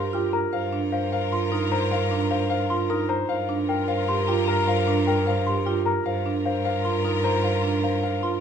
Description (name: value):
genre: classical, minimalist pattern music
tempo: 304 BPM (eighths)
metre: 7/8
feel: straight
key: unclear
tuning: A4 = 440 Hz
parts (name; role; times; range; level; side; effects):
- warm French horn; second line; 0.0-8.4 s; Bb4; -30 LUFS; right 1 dB; none
- clear studio string section; sustained chords; 0.0-8.4 s; F4 to Bb4; -32 LUFS; left 2 dB; none
- marimba with medium mallets; arpeggios; 0.0-8.4 s; D4 to C5; -27 LUFS; right 6 dB; none
- small celesta; arpeggios; 0.0-8.4 s; F5 to C6; -30 LUFS; left 4 dB; none
- clear cello; bass; 0.0-8.4 s; G2; -28 LUFS; right 2 dB; none
- warm grand piano; melody; 0.1-8.3 s; G4 to F5; -29 LUFS; left 9 dB; none
room: light reverb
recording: none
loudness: -21 LUFS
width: side -8 dB against mid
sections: 0.0-8.4 A section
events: none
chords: 0.0 Gm7; 0.5 F7sus4/G; 3.3 Gm7; 6.1 Fsus4/G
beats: 0.14 0.33 | 0.53 0.73 0.93 1.12 1.32 1.52 1.72 | 1.91 2.11 2.31 2.50 2.70 2.90 3.10 | 3.29 3.49 3.69 3.89 4.08 4.28 4.48 | 4.68 4.87 5.07 5.27 5.46 5.66 5.86 | 6.06 6.25 6.45 6.65 6.85 7.04 7.24 | 7.44 7.64 7.83 8.03 8.23